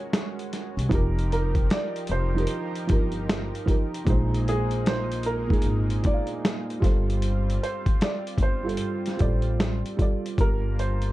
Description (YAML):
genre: lo-fi hip hop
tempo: 76 BPM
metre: 4/4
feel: swing 65% on 16ths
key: G phrygian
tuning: A4 = 440 Hz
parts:
  - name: felt-muted upright piano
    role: melody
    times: 0.0-11.1 s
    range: Ab4 to D5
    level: -32 LUFS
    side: right 2 dB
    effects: none
  - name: felt-muted upright piano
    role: accompaniment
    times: 0.0-11.1 s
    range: Bb2 to F5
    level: -30 LUFS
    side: right 4 dB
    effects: cassette tape
  - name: lush unison pad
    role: sustained chords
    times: 0.0-11.1 s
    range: F3 to A5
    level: -37 LUFS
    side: equal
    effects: chorus
  - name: dusty soul sampler-style drum kit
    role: drums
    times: 0.1-11.1 s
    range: hi-hat, kick drum, snare drum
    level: -25 LUFS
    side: equal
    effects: none
  - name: upright bass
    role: bass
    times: 0.8-11.1 s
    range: F1 to C2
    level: -26 LUFS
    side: equal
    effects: none
room: little or no reverb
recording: dark, warm production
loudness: -23 LUFS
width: side -16 dB against mid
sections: 0.0-10.4 A section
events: none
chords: 0.0 Ab9sus4; 0.9 F9sus4; 4.1 Bb9sus4; 6.8 G9sus4; 10.4 Gm9